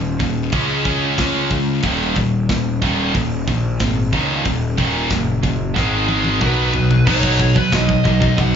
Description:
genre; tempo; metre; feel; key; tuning
heavy metal; 92 BPM; 4/4; straight; Eb minor; A4 = 441 Hz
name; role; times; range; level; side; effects
scooped high-gain guitar; riff; 0.0-8.6 s; Eb2 to Db4; -21 LUFS; left 8 dB; distortion
tight distorted guitar; riff; 0.0-8.6 s; Eb2 to Db4; -21 LUFS; right 11 dB; distortion, slapback echo
fuzz picked electric bass; bass; 0.0-8.6 s; Eb1 to Db2; -21 LUFS; equal; overdrive
tight metal drum kit; drums; 0.2-8.5 s; crash cymbal, hi-hat, kick drum, snare drum, toms; -22 LUFS; equal; none
high-gain lead guitar; melody; 6.4-8.6 s; B4 to F#5; -22 LUFS; equal; distortion, slapback echo, tape echo
room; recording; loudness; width
small room ambience; live gig heard through the venue's PA, club reverb, nothing above 7.6 kHz; -15 LUFS; side -8 dB against mid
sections
0.0-7.1 A section; 7.1-8.6 B section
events
drum fill 5.8-7.1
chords
0.0 Eb5; 0.5 Db5; 1.8 Ebm; 5.8 Ab5; 6.4 B5

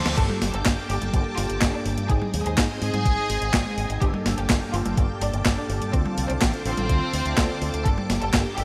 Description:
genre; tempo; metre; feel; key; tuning
italo disco; 125 BPM; 4/4; straight; G minor; A4 = 440 Hz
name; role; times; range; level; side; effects
clear studio violin section; melody; 0.0-8.6 s; C4 to A4; -33 LUFS; equal; delay
string machine, full ensemble; sustained chords; 0.0-8.6 s; Bb3 to Eb6; -36 LUFS; equal; phaser, ensemble chorus
mellow synth brass; stabs; 0.0-8.6 s; G2 to A4; -34 LUFS; equal; chorus, phaser
fingered electric bass with an envelope filter; bass; 0.0-8.6 s; G1 to Ab2; -30 LUFS; equal; none
clean 12-bit digital drum machine; drums; 0.1-8.6 s; crash cymbal, handclaps, hi-hat, snare drum, toms; -29 LUFS; equal; overdrive, small room ambience
electronic kick drum; drums; 0.2-8.4 s; none; -26 LUFS; equal; overdrive, small room ambience
room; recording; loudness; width
moderate lush hall reverb, RT60 1.8 s, digital ambience; bright 1980s-style digital production, vinyl crackle; -24 LUFS; mono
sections
0.2-8.6 A section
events
drum fill 0.0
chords
0.2 Gmadd9; 2.1 Ab; 4.0 Gmadd9; 5.9 Dm7; 7.9 Gmadd9

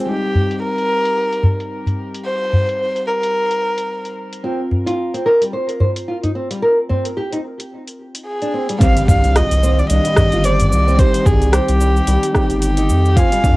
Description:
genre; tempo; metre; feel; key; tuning
organic downtempo; 110 BPM; 4/4; swing 57% on 16ths; C minor; A4 = 440 Hz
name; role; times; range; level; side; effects
muted felt-like synth keys; accompaniment; 0.0-13.6 s; Eb3 to Ab5; -23 LUFS; equal; chorus, sidechain pumping, low-pass filter, cassette tape
nylon-string guitar; arpeggios; 0.0-0.1, 4.4-13.6 s; G3 to C5; -20 LUFS; equal; cassette tape, tape echo
warm kamancheh; melody; 0.1-4.1, 8.3-13.6 s; G4 to F5; -20 LUFS; equal; tape echo
udu; percussion; 0.3-13.6 s; none; -17 LUFS; equal; none
afro-pop drum kit; drums; 0.5-13.6 s; hi-hat, rim click, shaker; -24 LUFS; equal; low-pass filter on perc, studio reverb, low-pass filter on hats, low-pass filter on snare
electronic kick drum; drums; 8.8-13.6 s; none; -15 LUFS; equal; studio reverb
impact; sound effects; 8.8-11.0 s; none; -21 LUFS; equal; none
round analog bass; bass; 9.1-13.6 s; G1 to F2; -15 LUFS; equal; none
room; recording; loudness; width
moderate booth ambience, RT60 0.2 s; home recording on cassette; -14 LUFS; side -20 dB against mid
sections
0.1-8.8 A section; 8.8-13.6 B section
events
impact 8.8-11.0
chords
0.1 Cm; 4.4 F5; 8.8 Cm

